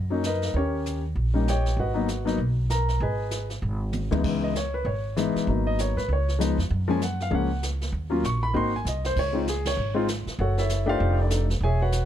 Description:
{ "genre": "jazz piano trio", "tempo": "195 BPM", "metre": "4/4", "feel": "swing 60% on 8ths", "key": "G# minor", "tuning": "A4 = 440 Hz", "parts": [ { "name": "upright bass", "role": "bass", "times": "0.0-12.1 s", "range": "E1 to G#2", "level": "-26 LUFS", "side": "right 1 dB", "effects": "none" }, { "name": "warm grand piano", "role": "melody", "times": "0.1-12.1 s", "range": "C#2 to C#6", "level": "-26 LUFS", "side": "left 2 dB", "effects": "plate reverb" }, { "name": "jazz brush drum kit", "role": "drums", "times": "0.2-12.1 s", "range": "brushed snare drum, crash cymbal, hi-hat, kick drum, ride cymbal, snare drum, toms", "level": "-34 LUFS", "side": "right 2 dB", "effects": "none" } ], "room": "little or no reverb", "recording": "dark, warm production", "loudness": "-23 LUFS", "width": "side -10 dB against mid", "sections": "0.0-4.2 A section; 4.2-12.1 B section", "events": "drum fill 3.9-4.2, 8.8-9.2; band accent 9.6", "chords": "0.0 Bmaj7; 0.5 D#7; 1.8 G#m7; 3.6 G#5; 4.2 C#m9; 5.5 G#m7; 6.1 C#7; 6.7 F#maj7; 7.9 D#7(no3); 8.5 G#9; 9.2 C#5; 10.4 F#m7; 11.0 F13" }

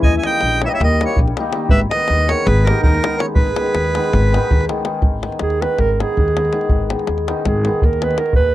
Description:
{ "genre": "balkan folk, Balkan wedding band", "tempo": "325 BPM (eighths)", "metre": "9/8", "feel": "straight", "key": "G# harmonic minor", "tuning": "A4 = 440 Hz", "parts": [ { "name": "accordion", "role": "melody", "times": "0.0-4.7 s", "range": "A#4 to G#5", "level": "-19 LUFS", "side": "right 1 dB", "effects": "none" }, { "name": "warm clarinet", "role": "second line", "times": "0.0-8.5 s", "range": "D#4 to E5", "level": "-22 LUFS", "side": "right 4 dB", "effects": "tape echo" }, { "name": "cimbalom", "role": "accompaniment", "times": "0.0-8.4 s", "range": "D#3 to D#4", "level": "-22 LUFS", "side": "left 4 dB", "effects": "none" }, { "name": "upright bass", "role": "bass", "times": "0.0-8.5 s", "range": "G#1 to D#2", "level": "-19 LUFS", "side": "equal", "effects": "none" }, { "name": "davul", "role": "percussion", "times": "0.0-8.4 s", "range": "none", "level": "-18 LUFS", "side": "equal", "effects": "none" } ], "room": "little or no reverb", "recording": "dry, close 1970s-style studio recording", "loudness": "-14 LUFS", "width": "side -14 dB against mid", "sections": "0.0-5.0 A section; 5.0-8.5 B section", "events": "clarinet solo 5.0-8.5", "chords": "0.0 D#; 1.7 G#m" }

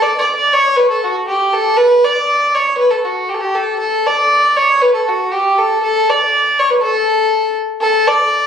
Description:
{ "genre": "celtic folk", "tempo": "119 BPM", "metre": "2/4", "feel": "swing 54% on 8ths", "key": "D major", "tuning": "A4 = 439 Hz", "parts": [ { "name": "warm fiddle", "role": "solo", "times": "0.0-8.5 s", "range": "F#4 to D5", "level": "-12 LUFS", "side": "equal", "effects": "none" } ], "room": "moderate small room reverb, RT60 0.5 s", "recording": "recorded on a phone in the room, club reverb", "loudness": "-12 LUFS", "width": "side -8 dB against mid", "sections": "0.0-7.8 A section", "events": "none", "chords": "none" }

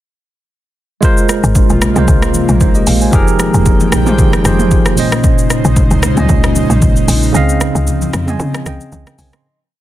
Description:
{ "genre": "amapiano", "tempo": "114 BPM", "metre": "4/4", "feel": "swing 55% on 16ths", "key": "Ab major", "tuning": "A4 = 440 Hz", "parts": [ { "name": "bright tine electric piano", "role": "accompaniment", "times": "1.0-9.6 s", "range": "Bb2 to C6", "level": "-15 LUFS", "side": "right 2 dB", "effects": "medium stereo tremolo" }, { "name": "airy breathy pad", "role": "sustained chords", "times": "1.3-9.4 s", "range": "C3 to G5", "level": "-19 LUFS", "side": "left 1 dB", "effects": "chorus, sidechain pumping" }, { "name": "deep house drum kit", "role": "drums", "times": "1.0-9.4 s", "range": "hi-hat, kick drum, rim click, shaker, toms", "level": "-13 LUFS", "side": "equal", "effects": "overdrive" }, { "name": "woody log drum bass", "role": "bass", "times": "1.4-9.3 s", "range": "F1 to Db3", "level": "-15 LUFS", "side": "equal", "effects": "none" }, { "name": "congas", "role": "percussion", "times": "1.6-9.3 s", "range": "none", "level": "-23 LUFS", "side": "left 3 dB", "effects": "none" } ], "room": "little or no reverb", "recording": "dense, heavily limited modern master", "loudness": "-9 LUFS", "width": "side -14 dB against mid", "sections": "1.0-9.4 drop", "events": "drop 1.0-9.4; break 7.3-9.4; fade-out 7.3-9.4", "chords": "1.0 Ab69; 3.1 Fm11; 5.0 Bbm11; 7.3 Dbmaj9" }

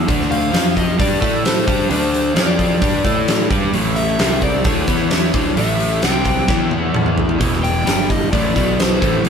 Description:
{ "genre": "blues rock power trio and southern rock", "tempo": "131 BPM", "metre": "4/4", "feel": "straight", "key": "unclear", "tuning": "A4 = 440 Hz", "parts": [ { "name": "overdriven electric guitar", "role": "riff", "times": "0.0-9.3 s", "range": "E2 to A4", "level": "-20 LUFS", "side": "equal", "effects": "none" }, { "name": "fuzz picked electric bass", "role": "bass", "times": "0.0-9.3 s", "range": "E1 to A2", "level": "-21 LUFS", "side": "equal", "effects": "overdrive" }, { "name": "huge arena drum kit", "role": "drums", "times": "0.1-9.3 s", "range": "hi-hat, kick drum, snare drum, toms", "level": "-18 LUFS", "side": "right 1 dB", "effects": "none" }, { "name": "overdriven slide guitar", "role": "melody", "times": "0.3-9.2 s", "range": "C5 to G5", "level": "-22 LUFS", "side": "left 5 dB", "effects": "none" }, { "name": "lead guitar through a small cranked amp", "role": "second line", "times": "0.3-9.2 s", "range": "D4 to D5", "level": "-30 LUFS", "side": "left 2 dB", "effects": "none" } ], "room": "light reverb", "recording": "band playing live in one room", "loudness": "-14 LUFS", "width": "side -7 dB against mid", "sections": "0.0-9.3 A section", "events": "drum fill 6.5-7.4", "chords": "0.1 D5; 0.5 F5; 1.0 D; 1.2 A5; 1.7 D5; 2.4 F5; 2.8 G5; 3.0 A5; 3.5 G5; 3.7 A5; 4.2 C5; 4.6 A; 4.9 E5; 5.3 A5; 6.0 C5; 6.5 E5; 7.9 G5; 8.3 Asus4; 8.6 B5" }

